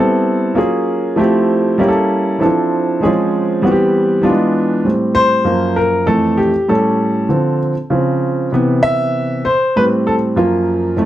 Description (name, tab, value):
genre	hip hop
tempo	98 BPM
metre	4/4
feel	swing 58% on 16ths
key	A minor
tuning	A4 = 440 Hz
part	warm grand piano	solo	0.0-11.1 s	F2 to E5	-12 LUFS	equal	none
room	moderate studio reverb, RT60 0.5 s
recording	none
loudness	-12 LUFS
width	side -13 dB against mid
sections	0.0-4.8 A section; 4.8-11.1 B section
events	grand piano solo 4.8-11.1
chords	0.0 Am9; 0.6 F#maj9; 1.2 Fmaj9; 1.8 A7b9; 2.4 Dm9; 3.0 C#maj7; 3.6 Cmaj7; 4.2 E7b9; 4.8 Am7; 5.5 F#maj7; 6.1 Fmaj9; 6.7 A7; 7.3 Dm7; 7.9 C#maj7; 8.5 Cmaj7; 9.7 Am7; 10.4 F#maj7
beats	0.56 1.18 1.79 | 2.40 3.01 3.62 4.24 | 4.85 5.46 6.07 6.68 | 7.30 7.91 8.52 9.13 | 9.75 10.36 10.97